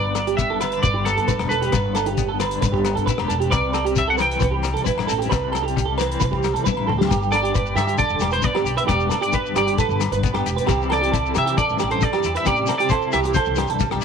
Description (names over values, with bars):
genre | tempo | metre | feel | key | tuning
highlife guitar band | 134 BPM | 4/4 | straight | G major | A4 = 443 Hz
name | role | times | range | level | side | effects
clean electric guitar | melody | 0.0-13.8 s | A4 to G5 | -24 LUFS | equal | analog chorus, tape echo
clean electric guitar | accompaniment | 0.0-14.0 s | G2 to G4 | -28 LUFS | left 10 dB | tremolo
semi-hollow electric guitar | arpeggios | 0.0-14.0 s | G4 to B4 | -23 LUFS | right 9 dB | ensemble chorus
upright bass | bass | 0.0-14.0 s | E1 to C3 | -26 LUFS | equal | none
warm soul drum kit | drums | 0.2-14.0 s | hi-hat, kick drum, rim click, snare drum, toms | -26 LUFS | left 4 dB | none
agogo bells | percussion | 0.2-14.0 s | none | -32 LUFS | left 10 dB | none
shekere | percussion | 0.2-14.0 s | none | -28 LUFS | left 6 dB | none
room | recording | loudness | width
light reverb, small room reverb | 1960s-style stereo with parts hard left and right | -18 LUFS | side -6 dB against mid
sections
0.0-7.1 A section; 7.1-14.0 B section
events
drum fill 6.7-7.1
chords
0.0 G; 3.5 C; 7.1 G; 10.7 C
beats
0.38 0.83 1.28 | 1.73 2.18 2.62 3.07 | 3.52 3.97 4.42 4.86 | 5.31 5.76 6.21 6.65 | 7.10 7.55 8.00 8.44 | 8.89 9.34 9.78 10.23 | 10.68 11.12 11.57 12.02 | 12.46 12.91 13.35 13.80